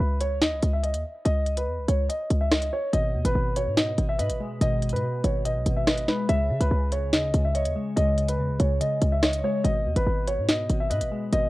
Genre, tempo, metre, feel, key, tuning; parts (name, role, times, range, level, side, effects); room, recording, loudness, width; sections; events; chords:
hip hop, drill; 143 BPM; 4/4; half-time; G# minor; A4 = 441 Hz
dark concert grand piano; melody; 0.0-11.5 s; B4 to E5; -28 LUFS; equal; low-pass filter, cassette tape
short 808-style bass; bass; 0.0-11.5 s; G#1 to C#3; -25 LUFS; equal
drill drum kit; drums; 0.2-11.4 s; hi-hat, rim click, snare drum; -26 LUFS; equal
glassy digital keys; accompaniment; 2.9-11.5 s; B2 to C#5; -30 LUFS; left 1 dB; chorus, low-pass filter, cassette tape
light reverb; home recording on cassette; -22 LUFS; side -18 dB against mid
0.0-11.5 A section
0.0 N.C.; 2.9 G#m; 6.3 C#5; 9.6 G#m